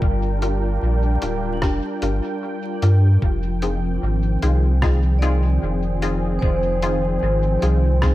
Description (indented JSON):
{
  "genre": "ambient dub",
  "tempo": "75 BPM",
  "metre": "4/4",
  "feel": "straight",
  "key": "F dorian",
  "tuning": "A4 = 438 Hz",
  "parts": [
    { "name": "warm analog pad", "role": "sustained chords", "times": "0.0-8.1 s", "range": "Eb3 to G5", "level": "-25 LUFS", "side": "equal", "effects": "chorus" },
    { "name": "vibraphone with soft mallets", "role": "arpeggios", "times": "0.0-8.1 s", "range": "D4 to G5", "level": "-29 LUFS", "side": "equal", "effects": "low-pass filter, dub echo" },
    { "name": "soft dub sub bass", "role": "bass", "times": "0.0-8.1 s", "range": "D1 to G2", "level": "-19 LUFS", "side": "equal", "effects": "none" },
    { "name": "electronic kick drum", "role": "drums", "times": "0.0-8.1 s", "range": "none", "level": "-22 LUFS", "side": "equal", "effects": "none" },
    { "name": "filtered dub chord stab", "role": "stabs", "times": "0.4-8.1 s", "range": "C4 to Bb4", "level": "-29 LUFS", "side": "left 3 dB", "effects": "ensemble chorus, dub echo" },
    { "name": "lo-fi sampler-style drum kit", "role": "drums", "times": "0.4-8.1 s", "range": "hi-hat, rim click", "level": "-32 LUFS", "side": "equal", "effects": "dub echo" }
  ],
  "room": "light reverb, digital ambience",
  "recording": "vinyl crackle",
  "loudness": "-18 LUFS",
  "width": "side -16 dB against mid",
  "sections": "0.0-8.1 A section",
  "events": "filter sweep on vibraphone 0.0-8.1",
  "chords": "0.0 Gm7; 3.2 Fm7",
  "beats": "| 0.02 0.82 1.62 2.42 | 3.22 4.02 4.82 5.62 | 6.42 7.22 8.02"
}